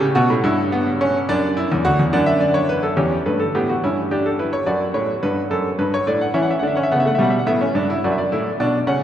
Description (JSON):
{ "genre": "classical, baroque-style 3-part fugue for grand piano", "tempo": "71 BPM (dotted quarters)", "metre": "12/8", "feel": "straight", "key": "unclear", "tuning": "A4 = 440 Hz", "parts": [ { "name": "bright concert grand piano", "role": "solo", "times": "0.0-9.0 s", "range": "D2 to F#5", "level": "-16 LUFS", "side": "equal", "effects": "none" } ], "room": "wet cathedral reverb, RT60 5.1 s", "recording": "in a vast, echoing space", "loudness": "-17 LUFS", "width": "side -10 dB against mid", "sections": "0.0-3.0 A section; 3.0-9.0 B section", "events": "none", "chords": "0.0 A7 (rootless); 1.3 D; 3.0 C#dim/E; 4.7 D/F#; 6.4 A7; 8.0 D/F#", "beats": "0.44 1.28 2.13 | 2.98 3.83 4.67 5.51 | 6.35 7.19 8.04 8.88" }